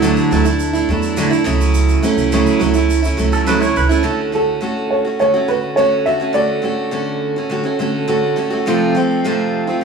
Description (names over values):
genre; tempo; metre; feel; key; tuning
acoustic pop; 104 BPM; 4/4; straight; unclear; A4 = 438 Hz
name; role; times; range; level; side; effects
picked steel-string acoustic guitar; accompaniment; 0.0-9.8 s; F2 to F#4; -16 LUFS; right 2 dB; none
upright bass; bass; 0.0-4.0 s; C#2 to E2; -18 LUFS; right 2 dB; none
tube shaker; percussion; 0.0-4.0 s; none; -31 LUFS; right 5 dB; none
pedal steel guitar; second line; 3.3-4.2 s; A4 to C#5; -20 LUFS; right 4 dB; none
dark upright piano; melody; 4.3-7.2 s; A4 to E5; -17 LUFS; right 1 dB; none
room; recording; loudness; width
moderate large studio reverb, RT60 1.2 s; band playing live in one room; -14 LUFS; side -5 dB against mid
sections
0.0-4.0 A section; 4.0-9.8 B section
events
none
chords
0.0 Dadd9; 1.5 A6/C#; 4.0 Dmaj7; 8.7 F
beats
0.02 0.59 1.17 | 1.75 2.32 2.90 3.47 | 4.05 4.62 5.20 5.78 | 6.36 6.93 7.51 8.09 | 8.66 9.24 9.82